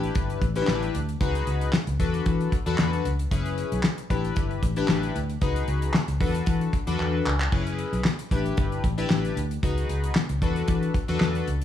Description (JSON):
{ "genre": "early-eighties boogie funk", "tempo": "114 BPM", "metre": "4/4", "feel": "straight", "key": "unclear", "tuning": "A4 = 440 Hz", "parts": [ { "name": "chorused polysynth", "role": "accompaniment", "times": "0.0-11.5 s", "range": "C#4 to B4", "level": "-29 LUFS", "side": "left 4 dB", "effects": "none" }, { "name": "vintage muted fingered electric bass", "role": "bass", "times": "0.0-11.6 s", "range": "F#1 to E3", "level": "-26 LUFS", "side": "left 1 dB", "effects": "none" }, { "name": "damped 70s drum kit", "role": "drums", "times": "0.0-11.6 s", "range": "crash cymbal, handclaps, hi-hat, kick drum, snare drum", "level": "-26 LUFS", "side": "equal", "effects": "none" } ], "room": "small room ambience", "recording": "studio reverb", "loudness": "-23 LUFS", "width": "side -10 dB against mid", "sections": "0.0-11.6 A section", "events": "drum fill 7.0-7.5", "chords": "0.0 A9sus4; 1.2 C#9sus4; 2.0 E9sus4; 3.3 F#9sus4; 4.1 A9sus4; 5.4 C#9sus4; 6.2 E9sus4; 7.5 F#9sus4; 8.3 A9sus4; 9.6 C#9sus4; 10.4 E9sus4", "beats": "0.16 0.68 | 1.21 1.74 2.26 2.79 | 3.31 3.84 4.37 4.89 | 5.42 5.95 6.47 7.00 | 7.53 8.05 8.58 9.10 | 9.63 10.16 10.68 11.21" }